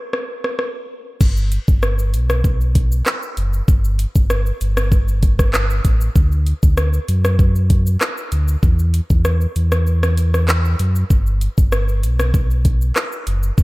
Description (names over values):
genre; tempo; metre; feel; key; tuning
dancehall; 97 BPM; 4/4; straight; unclear; A4 = 440 Hz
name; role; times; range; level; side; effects
afro-pop drum kit; drums; 0.1-13.6 s; crash cymbal, handclaps, hi-hat, kick drum, rim click, shaker; -17 LUFS; equal; none
sub bass with octave; bass; 1.2-13.6 s; F#1 to F#2; -16 LUFS; equal; none
room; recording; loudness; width
little or no reverb; none; -15 LUFS; side -21 dB against mid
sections
0.0-1.2 A section; 1.2-13.6 B section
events
kick muted 9.9-11.1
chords
none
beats
0.59 | 1.21 1.83 2.44 3.06 | 3.68 4.30 4.92 5.54 | 6.16 6.77 7.39 8.01 | 8.63 9.25 9.87 10.48 | 11.10 11.72 12.34 12.96 | 13.58